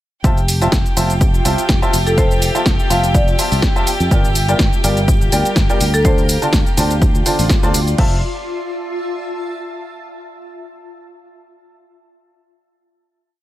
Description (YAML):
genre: piano house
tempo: 124 BPM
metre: 4/4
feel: swing 54% on 16ths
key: F major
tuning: A4 = 443 Hz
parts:
  - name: rich studio violin section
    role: sustained chords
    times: 0.2-8.0 s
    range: G4 to G5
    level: -24 LUFS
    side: equal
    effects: sidechain pumping
  - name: clear upright piano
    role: riff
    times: 0.2-8.2 s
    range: D3 to A5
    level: -21 LUFS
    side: equal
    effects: sidechain pumping, digital delay
  - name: fingered electric bass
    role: bass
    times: 0.2-8.2 s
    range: F1 to F2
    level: -18 LUFS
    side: equal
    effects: sidechain pumping
  - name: electronic kick drum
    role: drums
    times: 0.2-8.1 s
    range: none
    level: -16 LUFS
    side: equal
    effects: none
  - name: punchy analog drum machine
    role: drums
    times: 0.2-8.1 s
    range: crash cymbal, hi-hat, shaker, snare drum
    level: -21 LUFS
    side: equal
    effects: none
  - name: granular cloud pad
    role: texture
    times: 0.9-9.9 s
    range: F4 to C6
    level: -27 LUFS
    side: left 1 dB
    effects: built-in reverb, sidechain pumping
  - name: marimba with medium hard mallets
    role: melody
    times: 2.1-6.2 s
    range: A4 to F5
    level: -21 LUFS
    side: left 1 dB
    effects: digital delay
room: digital ambience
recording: none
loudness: -13 LUFS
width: side -14 dB against mid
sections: 0.2-8.0 drop; 8.0-9.9 final chord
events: drop 0.2-8.0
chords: 0.2 Fmaj7; 4.1 Gm7; 6.0 Dm7; 8.0 Fmaj7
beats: | 0.24 0.73 1.21 1.69 | 2.18 2.66 3.15 3.63 | 4.11 4.60 5.08 5.57 | 6.05 6.53 7.02 7.50 | 7.99 8.47 8.95 9.44